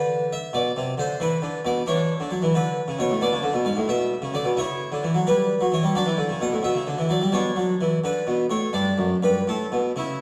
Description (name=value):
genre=classical, baroque-style suite movement for harpsichord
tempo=75-92 BPM (dotted quarters)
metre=12/8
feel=rubato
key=D major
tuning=A4 = 435 Hz
part: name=harpsichord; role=solo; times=0.0-10.2 s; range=F#2 to F#5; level=-24 LUFS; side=equal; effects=none
room=wet recital hall reverb, RT60 1.7 s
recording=dark, warm production, vinyl crackle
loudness=-23 LUFS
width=mono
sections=0.0-10.2 A section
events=none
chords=0.0 Bmadd11; 1.9 E5; 3.2 G#dim; 4.6 C#m7b5; 5.9 D; 7.3 Bm; 8.7 G5; 9.5 A